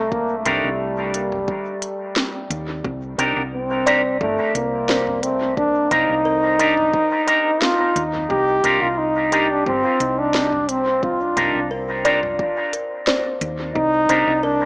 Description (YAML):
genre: ambient dub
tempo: 88 BPM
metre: 4/4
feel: swing 53% on 16ths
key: C minor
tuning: A4 = 441 Hz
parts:
  - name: warm trombone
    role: melody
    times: 0.0-14.7 s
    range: G3 to G4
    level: -19 LUFS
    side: equal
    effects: tape echo
  - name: kalimba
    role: arpeggios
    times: 0.0-14.7 s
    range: Bb4 to Bb5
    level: -25 LUFS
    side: equal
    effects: tape echo
  - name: hollow-body short-scale fingered electric bass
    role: bass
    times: 0.0-14.7 s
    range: G1 to Eb2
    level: -30 LUFS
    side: equal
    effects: tube saturation
  - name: electronic kick drum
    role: drums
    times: 0.1-13.9 s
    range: none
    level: -29 LUFS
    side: equal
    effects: overdrive
  - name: electric guitar with an envelope filter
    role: stabs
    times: 0.5-14.3 s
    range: D4 to Bb4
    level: -22 LUFS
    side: equal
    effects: vintage 12-bit sampler grit, dub echo
  - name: organic electronic drum kit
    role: drums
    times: 0.5-14.2 s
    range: hi-hat, snare drum, toms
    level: -25 LUFS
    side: equal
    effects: dub echo
room: moderate spring reverb, RT60 2.3 s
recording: small speaker sound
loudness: -17 LUFS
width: side -28 dB against mid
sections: 0.0-14.7 A section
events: none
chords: 0.0 Cm7